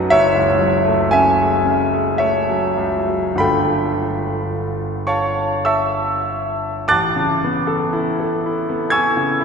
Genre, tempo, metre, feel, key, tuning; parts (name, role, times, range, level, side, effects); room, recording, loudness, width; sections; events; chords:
classical, impressionist solo piano; 45-60 BPM; 3/4; rubato; A major; A4 = 441 Hz
clear grand piano; solo; 0.0-9.4 s; F#1 to A6; -16 LUFS; equal
wet cathedral reverb, RT60 4.6 s; minimal, uncompressed stereo recording; -16 LUFS; side -5 dB against mid
0.0-6.9 A section; 6.9-9.4 B section
0.1 F#m9; 3.4 G9; 6.9 Aadd9